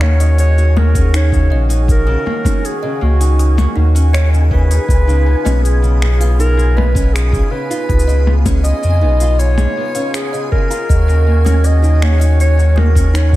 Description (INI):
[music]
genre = folktronica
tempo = 80 BPM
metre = 4/4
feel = straight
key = Eb minor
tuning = A4 = 438 Hz
[part]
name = breathy clarinet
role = melody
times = 0.0-13.4 s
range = Gb4 to Eb5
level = -21 LUFS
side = equal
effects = diffuse ambient delay
[part]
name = accordion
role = sustained chords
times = 0.0-13.4 s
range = Db3 to Gb4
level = -28 LUFS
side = right 1 dB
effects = light tremolo tuning
[part]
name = nylon-string guitar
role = arpeggios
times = 0.0-13.4 s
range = Db3 to Ab4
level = -25 LUFS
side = equal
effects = diffuse ambient delay
[part]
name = warm sub bass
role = bass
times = 0.0-13.4 s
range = Bb1 to F2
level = -11 LUFS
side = equal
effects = none
[part]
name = minimal click drum kit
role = drums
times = 0.0-13.4 s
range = cabasa, finger snaps, hi-hat, percussion blips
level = -23 LUFS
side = left 1 dB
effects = none
[part]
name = backwards swelling texture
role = texture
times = 0.0-13.4 s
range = Ab4 to Ab5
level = -30 LUFS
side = left 1 dB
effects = built-in reverb, ensemble chorus
[part]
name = kalimba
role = second line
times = 0.2-13.3 s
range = Eb4 to Eb6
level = -27 LUFS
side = right 3 dB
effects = diffuse ambient delay
[part]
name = electronic kick drum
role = drums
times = 0.9-13.4 s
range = none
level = -15 LUFS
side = equal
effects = none
[sound]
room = light reverb, small room ambience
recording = none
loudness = -11 LUFS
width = side -16 dB against mid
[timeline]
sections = 0.0-13.4 A section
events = none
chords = 0.0 Ebm7; 4.9 Db7; 10.9 Ebm7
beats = 0.39 1.14 | 1.89 2.64 3.39 4.14 | 4.89 5.64 6.39 7.14 | 7.89 8.64 9.39 10.14 | 10.89 11.64 12.39 13.14